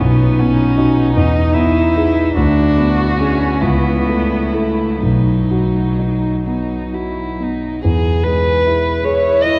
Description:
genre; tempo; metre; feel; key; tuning
classical, slow romantic movement for piano trio; 41-52 BPM (dotted quarters); 6/8; rubato; E major; A4 = 440 Hz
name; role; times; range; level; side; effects
muted violin; melody; 0.0-9.6 s; D#4 to D#5; -22 LUFS; equal; none
muted cello; second line; 0.0-9.6 s; F#3 to E4; -21 LUFS; equal; none
dark concert grand piano; accompaniment; 0.0-9.6 s; B1 to A4; -18 LUFS; equal; none
room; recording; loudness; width
wet cathedral reverb, RT60 4.5 s; dark, warm production; -15 LUFS; mono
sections
0.0-7.8 A section; 7.8-9.6 B section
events
none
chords
0.0 B; 1.2 E; 2.4 E7/D; 3.6 A/C#; 5.0 B; 7.8 E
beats
| 0.01 1.17 | 2.37 3.63 | 5.03 6.48 | 7.84 9.04

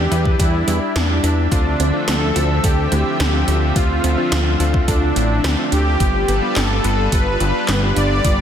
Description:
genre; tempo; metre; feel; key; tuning
synthwave; 107 BPM; 4/4; straight; unclear; A4 = 440 Hz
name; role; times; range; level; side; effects
soft supersaw; melody; 0.0-8.4 s; D4 to D5; -21 LUFS; equal; digital delay
lush unison pad; sustained chords; 0.0-8.4 s; D3 to E5; -24 LUFS; equal; chorus, sidechain pumping
clear electric grand piano; stabs; 0.0-8.4 s; B3 to B4; -27 LUFS; left 6 dB; digital delay
fat analog bass; bass; 0.0-8.4 s; G1 to E2; -19 LUFS; equal; none
thumb-piano-like synth pluck; arpeggios; 0.1-8.4 s; G3 to A4; -29 LUFS; right 4 dB; chorus, digital delay
80s electronic pad drums; drums; 0.1-8.4 s; handclaps, hi-hat, snare drum; -24 LUFS; right 1 dB; none
electronic kick drum; drums; 0.3-8.4 s; none; -18 LUFS; equal; overdrive
room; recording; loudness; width
light reverb; dense, heavily limited modern master; -15 LUFS; side -9 dB against mid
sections
0.0-8.4 A section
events
none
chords
0.0 Em7; 1.5 Dm7; 6.0 G7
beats
0.40 0.96 | 1.52 2.08 2.64 3.20 | 3.76 4.32 4.88 5.44 | 6.00 6.56 7.12 7.68 | 8.25

